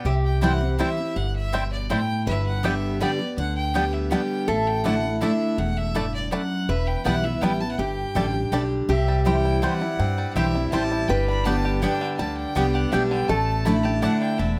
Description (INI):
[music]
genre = bluegrass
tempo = 163 BPM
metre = 3/4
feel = straight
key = unclear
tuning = A4 = 439 Hz
[part]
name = bluegrass banjo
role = melody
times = 0.0-14.6 s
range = D3 to G4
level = -33 LUFS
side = equal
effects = none
[part]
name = clear fiddle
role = melody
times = 0.0-14.6 s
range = D5 to B5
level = -33 LUFS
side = equal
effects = slapback echo
[part]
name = picked steel-string acoustic guitar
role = accompaniment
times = 0.0-14.6 s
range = E2 to G4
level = -27 LUFS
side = equal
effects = none
[part]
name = upright bass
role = bass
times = 0.0-14.6 s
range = E1 to G2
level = -28 LUFS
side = equal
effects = none
[part]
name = lap resonator guitar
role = second line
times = 0.1-14.6 s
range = G4 to B4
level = -32 LUFS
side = equal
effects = none
[part]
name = mandolin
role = stabs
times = 0.4-14.1 s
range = A3 to A5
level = -31 LUFS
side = equal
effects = none
[sound]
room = light reverb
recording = close, detailed microphones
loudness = -23 LUFS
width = mono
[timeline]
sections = 0.1-8.9 A section; 8.9-14.6 A section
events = none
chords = 0.1 C; 2.3 G; 4.5 Asus4; 6.7 Em; 7.8 Gsus2; 8.9 C; 11.1 G; 13.3 Asus4